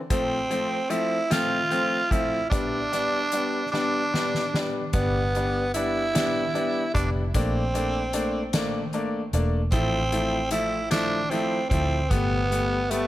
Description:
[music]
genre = six-eight pop ballad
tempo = 50 BPM (dotted quarters)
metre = 6/8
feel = straight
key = unclear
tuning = A4 = 440 Hz
[part]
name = growling tenor saxophone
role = melody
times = 0.1-13.1 s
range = A3 to F4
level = -26 LUFS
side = right 2 dB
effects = analog delay
[part]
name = bright grand piano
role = accompaniment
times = 0.1-13.1 s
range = F3 to E4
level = -28 LUFS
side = left 2 dB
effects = none
[part]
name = soft-mallet drum kit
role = drums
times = 0.1-13.1 s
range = hi-hat, kick drum, snare drum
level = -29 LUFS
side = equal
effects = none
[part]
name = vintage muted fingered electric bass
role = bass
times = 4.9-13.1 s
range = E1 to D2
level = -28 LUFS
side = equal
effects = none
[sound]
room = light reverb, small room ambience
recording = none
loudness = -22 LUFS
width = side -14 dB against mid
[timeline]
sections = 0.0-13.1 A section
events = drum fill 3.7-4.9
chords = 0.1 F; 2.5 G; 7.3 Bbmaj7; 9.7 Fmaj7/A; 12.1 Gadd9

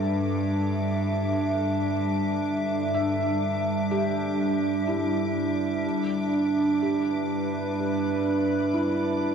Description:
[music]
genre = ambient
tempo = 62 BPM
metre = 3/4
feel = straight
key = G major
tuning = A4 = 442 Hz
[part]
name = warbly tape-like pad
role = sustained chords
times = 0.0-9.3 s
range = G3 to B5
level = -24 LUFS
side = right 1 dB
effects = chorus, built-in reverb
[part]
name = felt-muted upright piano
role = arpeggios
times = 0.0-9.3 s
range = E4 to D6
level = -33 LUFS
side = equal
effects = diffuse ambient delay
[part]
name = clear symphonic cello section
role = bass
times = 0.0-9.3 s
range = G2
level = -32 LUFS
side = equal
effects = none
[part]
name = clear studio violin section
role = texture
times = 0.0-9.3 s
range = D6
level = -41 LUFS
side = left 3 dB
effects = none
[sound]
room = wet cathedral reverb, RT60 4.8 s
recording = in a vast, echoing space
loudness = -23 LUFS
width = side -7 dB against mid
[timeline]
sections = 0.0-9.3 A section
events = fade-in on violin section 0.0-9.3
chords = 0.0 G69

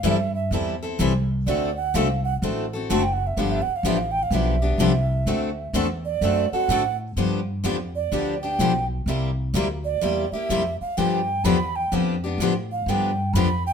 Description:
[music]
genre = acoustic string swing (jazz manouche)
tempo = 126 BPM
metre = 4/4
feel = swing 64% on 8ths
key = G mixolydian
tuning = A4 = 440 Hz
[part]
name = breathy bright alto ocarina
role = second line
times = 0.0-13.7 s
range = D5 to B5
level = -25 LUFS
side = right 4 dB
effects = none
[part]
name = picked steel-string acoustic guitar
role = accompaniment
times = 0.0-13.5 s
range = C3 to A4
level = -24 LUFS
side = left 5 dB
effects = none
[part]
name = picked swing-style acoustic guitar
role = accompaniment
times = 0.0-13.5 s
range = C3 to A4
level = -32 LUFS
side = right 6 dB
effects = none
[part]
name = upright bass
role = bass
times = 0.0-13.7 s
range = F#1 to A2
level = -25 LUFS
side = equal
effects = none
[sound]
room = moderate studio reverb, RT60 0.9 s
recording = minimal, uncompressed stereo recording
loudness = -21 LUFS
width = side -7 dB against mid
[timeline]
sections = 0.0-7.2 A section; 7.2-13.7 A section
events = ocarina solo 0.0-13.7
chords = 0.0 Am7; 1.5 D7; 3.4 G7; 5.3 D7; 7.2 G7; 9.1 C7; 11.0 G7

